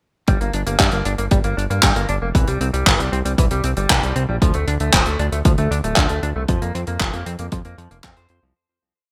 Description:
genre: italo disco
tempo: 116 BPM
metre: 4/4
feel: straight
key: G dorian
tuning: A4 = 440 Hz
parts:
  - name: direct-recorded clean electric guitar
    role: arpeggios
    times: 0.3-8.5 s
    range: E3 to C5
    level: -28 LUFS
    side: equal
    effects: lush chorus, delay
  - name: fat analog bass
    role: bass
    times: 0.3-8.5 s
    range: D1 to G2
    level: -24 LUFS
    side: equal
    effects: tube saturation, delay
  - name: damped 70s drum kit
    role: drums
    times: 0.3-8.4 s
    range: handclaps, hi-hat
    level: -22 LUFS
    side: equal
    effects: studio reverb, gated reverb
  - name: electronic kick drum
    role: drums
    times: 0.3-8.1 s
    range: none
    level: -20 LUFS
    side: equal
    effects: studio reverb
room: light reverb, small room ambience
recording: bright 1980s-style digital production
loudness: -19 LUFS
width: mono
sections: 0.3-8.6 verse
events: fade-out 5.8-8.6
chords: 0.3 Gm; 2.3 C; 4.4 Dm; 6.5 Fsus4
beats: | 0.28 0.80 1.31 1.83 | 2.35 2.87 3.38 3.90 | 4.42 4.93 5.45 5.97 | 6.49 7.00 7.52 8.04

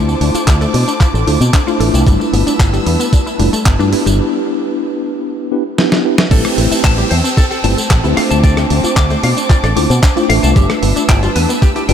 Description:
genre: nu-disco, nu disco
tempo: 113 BPM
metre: 4/4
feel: straight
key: A minor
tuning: A4 = 440 Hz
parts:
  - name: mellow tine electric piano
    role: accompaniment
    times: 0.0-11.9 s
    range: A3 to E5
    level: -17 LUFS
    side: equal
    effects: medium stereo tremolo, tape echo
  - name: dark chamber violin section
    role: sustained chords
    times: 0.0-11.9 s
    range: C4 to E6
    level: -22 LUFS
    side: equal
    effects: sidechain pumping
  - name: fingered electric bass with an envelope filter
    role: bass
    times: 0.0-11.9 s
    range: F1 to B2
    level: -15 LUFS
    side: equal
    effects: tube saturation
  - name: analog pluck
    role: arpeggios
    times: 0.1-11.9 s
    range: G3 to A4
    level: -22 LUFS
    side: left 4 dB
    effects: chorus, sidechain pumping, tape echo
  - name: dusty soul sampler-style drum kit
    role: drums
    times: 0.1-11.9 s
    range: crash cymbal, handclaps, hi-hat, rim click, snare drum, tambourine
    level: -19 LUFS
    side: right 1 dB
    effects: none
  - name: electronic kick drum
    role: drums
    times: 0.5-11.7 s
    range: none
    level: -11 LUFS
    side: equal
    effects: none
  - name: clean electric guitar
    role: riff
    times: 6.3-11.9 s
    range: F4 to D6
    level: -22 LUFS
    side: left 3 dB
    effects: lush chorus, tape echo
  - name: downlifter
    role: sound effects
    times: 6.3-10.6 s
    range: none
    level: -26 LUFS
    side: equal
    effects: none
room: light reverb, digital ambience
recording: none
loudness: -11 LUFS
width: side -8 dB against mid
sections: 0.0-6.3 A section; 6.3-11.9 B section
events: break 4.2-6.3; drum fill 5.8-6.3; drop 6.3-11.9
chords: 0.0 Dm7; 2.1 G13; 4.2 Em7; 6.3 Am7; 8.2 Dm7; 10.6 G13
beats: 0.47 1.00 1.54 | 2.07 2.60 3.13 3.66 | 4.19 4.72 5.25 5.78 | 6.32 6.85 7.38 7.91 | 8.44 8.97 9.50 10.03 | 10.56 11.09 11.62

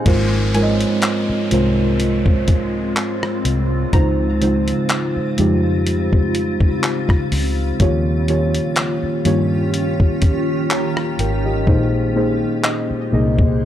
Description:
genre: contemporary R&B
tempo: 62 BPM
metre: 4/4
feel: swing 54% on 16ths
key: Ab major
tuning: A4 = 440 Hz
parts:
  - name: muted felt-like synth keys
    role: accompaniment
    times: 0.0-13.7 s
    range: Ab2 to Bb5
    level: -19 LUFS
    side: equal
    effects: chorus
  - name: granular cloud pad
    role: sustained chords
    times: 0.0-13.7 s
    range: Db3 to G4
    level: -25 LUFS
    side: left 1 dB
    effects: built-in reverb
  - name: vintage muted fingered electric bass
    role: bass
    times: 0.1-13.7 s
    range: Ab1 to G2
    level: -21 LUFS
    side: equal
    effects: none
  - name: dusty soul sampler-style drum kit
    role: drums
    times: 0.1-13.6 s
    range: crash cymbal, handclaps, hi-hat, kick drum, rim click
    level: -18 LUFS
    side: equal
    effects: none
  - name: downlifter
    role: sound effects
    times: 0.1-7.8 s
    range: none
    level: -33 LUFS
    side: equal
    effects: none
  - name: glassy wavetable pluck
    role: texture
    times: 0.5-5.7, 12.6-13.7 s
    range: Eb5 to Bb5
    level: -31 LUFS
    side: equal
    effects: chorus, tape echo
room: little or no reverb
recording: dry, gritty hardware recording, transformer saturation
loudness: -15 LUFS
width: side -11 dB against mid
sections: 0.1-13.7 A section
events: hi-hats muted 11.7-13.7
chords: 0.1 Ab69; 3.9 Dbmaj7; 7.8 Eb9; 11.7 Bb9sus4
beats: | 0.06 1.03 2.00 2.96 | 3.93 4.90 5.87 6.83 | 7.80 8.77 9.74 10.70 | 11.67 12.64 13.61

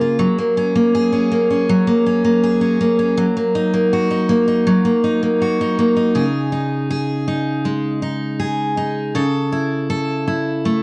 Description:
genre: pop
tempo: 80 BPM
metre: 4/4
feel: straight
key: unclear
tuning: A4 = 440 Hz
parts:
  - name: picked steel-string acoustic guitar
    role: solo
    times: 0.0-10.8 s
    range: C#3 to A4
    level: -18 LUFS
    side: equal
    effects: none
room: moderate spring reverb, RT60 1.5 s, small room ambience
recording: cassette tape, nothing above 10.6 kHz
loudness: -18 LUFS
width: mono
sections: 0.0-6.2 A section; 6.2-10.8 B section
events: none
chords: 0.2 F#add9; 3.2 D#m/F#; 6.2 C#sus2; 9.1 A/C#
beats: | 0.19 0.93 1.68 2.42 | 3.17 3.92 4.66 5.41 | 6.16 6.90 7.65 8.40 | 9.15 9.90 10.65

